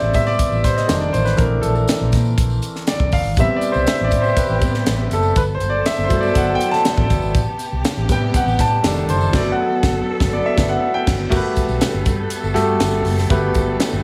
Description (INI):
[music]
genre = polished 1980s jazz-funk pop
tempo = 121 BPM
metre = 4/4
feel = straight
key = unclear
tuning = A4 = 441 Hz
[part]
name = clear baby grand piano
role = accompaniment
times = 0.0-14.0 s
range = C3 to A5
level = -21 LUFS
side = equal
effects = subtle chorus
[part]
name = vintage muted fingered electric bass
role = bass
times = 0.0-14.0 s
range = F1 to Bb2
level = -23 LUFS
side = equal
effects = none
[part]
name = tight funk drum kit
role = drums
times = 0.1-13.9 s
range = crash cymbal, hi-hat, kick drum, snare drum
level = -23 LUFS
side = equal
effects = gated reverb
[part]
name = tambourine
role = percussion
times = 0.1-13.9 s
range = none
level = -40 LUFS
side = equal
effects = none
[part]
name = warm studio string section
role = sustained chords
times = 3.4-14.0 s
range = C3 to B4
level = -29 LUFS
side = equal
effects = none
[sound]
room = light reverb, studio reverb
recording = none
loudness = -18 LUFS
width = mono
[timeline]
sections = 0.0-11.3 A section; 11.3-14.0 B section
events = grand piano solo 0.0-11.3; band accent 9.3-11.3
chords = 0.0 Am9; 0.9 F13; 1.4 Bbmaj9#11; 3.4 Am9; 5.4 Gmaj9; 7.4 Am9; 8.8 F13; 9.3 Gmaj9